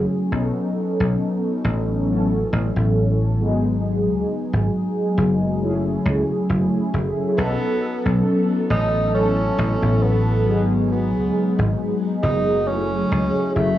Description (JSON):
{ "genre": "vaporwave", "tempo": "68 BPM", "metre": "4/4", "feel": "swing 54% on 16ths", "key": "unclear", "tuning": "A4 = 440 Hz", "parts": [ { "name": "mellow synth brass", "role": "accompaniment", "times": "0.0-13.8 s", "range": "F#3 to A4", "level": "-21 LUFS", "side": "equal", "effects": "analog chorus, analog delay" }, { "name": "dry thumbed slap bass", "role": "bass", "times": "0.0-13.7 s", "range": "F#1 to C#2", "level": "-21 LUFS", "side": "equal", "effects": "none" }, { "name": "breathy tenor saxophone", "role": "melody", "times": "7.4-13.8 s", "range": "A3 to D#4", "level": "-25 LUFS", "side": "right 1 dB", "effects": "tape echo" } ], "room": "moderate recital hall reverb, RT60 1.4 s, small room ambience", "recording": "cassette tape", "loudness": "-18 LUFS", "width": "side -13 dB against mid", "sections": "0.0-13.8 A section", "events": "none", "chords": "0.3 B7; 2.1 A6; 3.4 G#m7; 5.6 F#m9; 7.4 B7; 9.1 A6; 10.5 G#m7; 12.7 F#m9" }